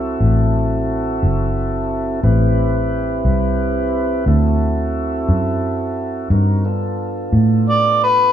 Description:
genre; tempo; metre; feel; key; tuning
slow blues; 59 BPM (dotted quarters); 12/8; straight; D mixolydian; A4 = 443 Hz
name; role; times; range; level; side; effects
tonewheel organ; sustained chords; 0.0-8.3 s; B3 to B4; -21 LUFS; right 1 dB; slow rotary speaker
vintage muted fingered electric bass; bass; 0.0-8.3 s; F#1 to A2; -17 LUFS; equal; none
overdriven harmonica; melody; 7.7-8.3 s; B4 to D5; -12 LUFS; equal; none
room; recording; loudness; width
moderate large studio reverb, RT60 0.9 s; band playing live in one room; -15 LUFS; side -10 dB against mid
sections
0.0-8.3 A section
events
none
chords
0.0 D9 (rootless); 2.2 Am7; 4.3 D9; 6.3 G9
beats
0.20 1.22 | 2.23 3.25 4.27 5.28 | 6.30 7.32

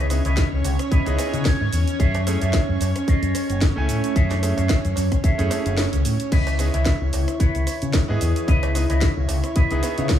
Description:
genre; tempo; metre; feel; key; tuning
nu-disco, nu disco; 111 BPM; 4/4; swing 55% on 16ths; C# minor; A4 = 440 Hz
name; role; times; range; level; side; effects
bright grand piano; accompaniment; 0.0-10.1 s; A3 to G#5; -30 LUFS; right 1 dB; vintage 12-bit sampler grit, sidechain pumping, tape echo
lush unison pad; sustained chords; 0.0-10.2 s; C#4 to C#5; -27 LUFS; right 1 dB; chorus, sidechain pumping
electric guitar with an envelope filter; riff; 0.0-10.1 s; E4 to G#5; -30 LUFS; equal; wide subtle chorus, tape echo
fingered electric bass with an envelope filter; bass; 0.0-10.2 s; F#1 to C#3; -22 LUFS; left 1 dB; tube saturation
house drum kit; drums; 0.1-10.2 s; crash cymbal, hi-hat, rim click, shaker, snare drum; -29 LUFS; equal; none
cowbell; percussion; 0.3-9.4 s; none; -38 LUFS; right 7 dB; none
electronic kick drum; drums; 0.4-10.2 s; none; -20 LUFS; equal; none
room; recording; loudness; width
light reverb; small room ambience; -18 LUFS; side -10 dB against mid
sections
0.0-10.2 A section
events
clean electric guitar fill 0.9-2.0; kick drops out 5.8-6.3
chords
0.0 C#m9; 2.0 F#m9; 6.3 C#m9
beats
0.37 0.91 1.45 | 1.99 2.54 3.08 3.62 | 4.16 4.70 5.24 5.78 | 6.32 6.86 7.40 7.94 | 8.48 9.02 9.56 10.10

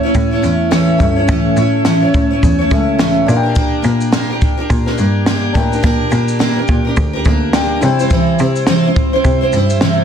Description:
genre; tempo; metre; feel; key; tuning
acoustic pop; 106 BPM; 4/4; swing 60% on 16ths; unclear; A4 = 445 Hz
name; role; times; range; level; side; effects
felt-muted upright piano; accompaniment; 0.0-10.0 s; C#4 to G5; -23 LUFS; left 5 dB; none
picked steel-string acoustic guitar; accompaniment; 0.0-10.0 s; A2 to C#5; -15 LUFS; right 1 dB; double-tracked left and right
rich cello; bass; 0.0-10.0 s; C#2 to C3; -17 LUFS; equal; none
compact cocktail drum kit; drums; 0.1-10.0 s; kick drum, shaker, snare drum; -16 LUFS; equal; none
room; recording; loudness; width
moderate plate reverb, RT60 1.5 s, small room ambience; dense, heavily limited modern master; -11 LUFS; side -8 dB against mid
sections
0.0-10.0 A section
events
none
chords
0.0 A; 3.3 Gm; 7.8 C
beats
0.15 0.72 | 1.29 1.86 2.43 3.00 | 3.57 4.13 4.70 5.27 | 5.84 6.41 6.98 7.54 | 8.11 8.68 9.25 9.81

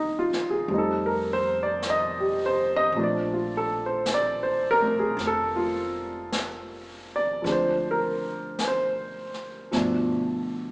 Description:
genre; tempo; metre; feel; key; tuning
jazz ballad; 53 BPM; 4/4; swing 68% on 8ths; Bb major; A4 = 440 Hz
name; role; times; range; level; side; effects
warm baby grand piano; accompaniment; 0.0-10.7 s; B2 to Eb5; -24 LUFS; equal; none
upright bass; bass; 0.0-10.7 s; F1 to F2; -40 LUFS; equal; none
jazz brush drum kit; drums; 0.3-10.7 s; brushed snare drum, hi-hat, snare drum; -34 LUFS; left 1 dB; none
room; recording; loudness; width
wet large studio reverb, RT60 1.3 s; heard from further back in the room, small speaker sound; -23 LUFS; side -26 dB against mid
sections
0.0-10.7 A section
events
none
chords
0.0 Cm7; 0.7 F9; 2.9 Bbmaj9; 7.4 Dm7b5; 9.7 G7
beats
0.70 1.82 | 2.95 4.07 5.19 6.32 | 7.45 8.58 9.72

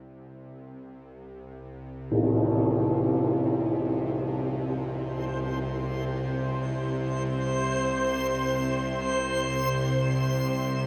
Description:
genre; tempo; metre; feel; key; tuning
dark ambient drone; free time; none; none; unclear; A4 = 441 Hz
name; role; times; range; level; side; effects
bowed-like drone; drone; 0.0-10.9 s; C2 to C3; -32 LUFS; equal; built-in reverb
tam-tam; percussion; 2.1-2.3 s; none; -30 LUFS; equal; low-pass filter on cymbals
backwards swelling texture; texture; 5.2-10.9 s; C5; -32 LUFS; equal; built-in reverb, shimmer reverb
room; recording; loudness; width
wet huge ambient reverb, RT60 7.2 s; none; -27 LUFS; mono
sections
0.0-10.9 A section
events
fade-in on synth drone 0.0-10.9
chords
none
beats
free time

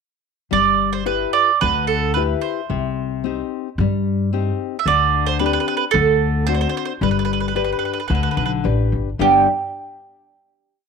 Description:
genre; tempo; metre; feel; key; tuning
italian folk, Italian serenade; 111 BPM; 4/4; straight; G major; A4 = 440 Hz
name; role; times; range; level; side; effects
mandolin; melody; 0.5-9.5 s; G4 to E5; -18 LUFS; right 9 dB; none
nylon-string guitar; accompaniment; 0.5-9.5 s; G2 to B4; -22 LUFS; left 14 dB; none
upright bass; bass; 0.5-9.5 s; G1 to G2; -22 LUFS; equal; none
room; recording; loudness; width
moderate spring reverb, RT60 1.3 s, studio ambience; 1960s-style stereo with parts hard left and right; -17 LUFS; side -5 dB against mid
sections
0.5-9.2 A section; 9.2-10.9 final chord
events
none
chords
0.5 G6; 2.7 Cm; 4.9 D7sus4; 5.9 D7; 7.0 G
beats
| 0.52 1.07 1.61 2.16 | 2.70 3.25 3.79 4.33 | 4.86 5.40 5.94 6.48 | 7.01 7.56 8.10 8.65 | 9.20

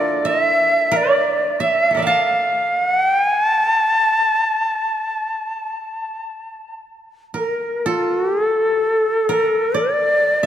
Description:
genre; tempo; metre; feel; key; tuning
japanese traditional, Japanese chamber music; 55-69 BPM; 4/4; rubato; A miyako bushi; A4 = 443 Hz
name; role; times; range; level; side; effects
breathy bright shakuhachi; melody; 0.0-10.5 s; A4 to A5; -16 LUFS; equal; none
koto; second line; 0.0-10.5 s; D4 to A5; -22 LUFS; right 4 dB; none
room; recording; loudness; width
wet church reverb, RT60 3.6 s; dark, warm production; -16 LUFS; side -10 dB against mid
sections
0.0-7.8 A section; 7.8-10.5 B section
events
none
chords
none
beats
| 0.23 1.12 2.04 2.96 | 3.89 4.83 5.78 6.80 | 7.83 8.80 9.75

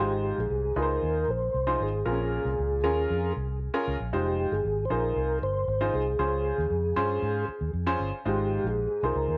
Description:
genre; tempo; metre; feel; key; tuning
uptempo 1960s-style soul; 116 BPM; 4/4; straight; Ab major; A4 = 440 Hz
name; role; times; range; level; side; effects
percussive tonewheel organ; melody; 0.0-9.4 s; G4 to C5; -31 LUFS; equal; chorus vibrato, slow rotary speaker, tape echo
clear upright piano; accompaniment; 0.0-9.4 s; Ab2 to Ab5; -33 LUFS; equal; none
vintage muted fingered electric bass; bass; 0.0-9.4 s; F1 to Ab2; -33 LUFS; equal; none
room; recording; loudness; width
moderate spring reverb, RT60 1.2 s, studio reverb; none; -28 LUFS; mono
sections
0.0-9.4 A section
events
none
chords
0.0 Ab6; 2.1 Bbm7; 4.1 Fm7; 6.2 Dbmaj7; 8.3 Ab6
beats
0.51 1.03 1.55 | 2.06 2.58 3.10 3.62 | 4.13 4.65 5.17 5.68 | 6.20 6.71 7.23 7.75 | 8.26 8.78 9.29

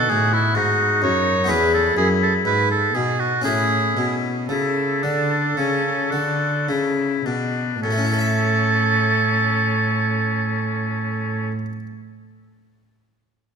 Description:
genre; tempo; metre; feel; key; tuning
classical, baroque-style sonata movement with continuo; 51-66 BPM; 4/4; rubato; A major; A4 = 441 Hz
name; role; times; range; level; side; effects
warm oboe; melody; 0.0-11.5 s; C#4 to F#4; -25 LUFS; left 9 dB; none
clear oboe; second line; 0.0-11.5 s; E4 to C#5; -22 LUFS; right 5 dB; none
harpsichord; accompaniment; 0.0-11.9 s; E2 to E5; -25 LUFS; left 3 dB; none
dark cello; bass; 0.0-11.5 s; E2 to D3; -24 LUFS; right 1 dB; none
room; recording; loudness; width
moderate concert hall reverb, RT60 2.1 s; none; -18 LUFS; side -6 dB against mid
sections
0.0-7.8 A section; 7.8-12.4 B section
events
slowing down 0.0-7.8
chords
0.0 B7; 1.5 E; 3.5 A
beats
0.56 1.50 2.46 | 3.45 4.49 5.57 6.68 | 7.83 8.99 10.15 11.31

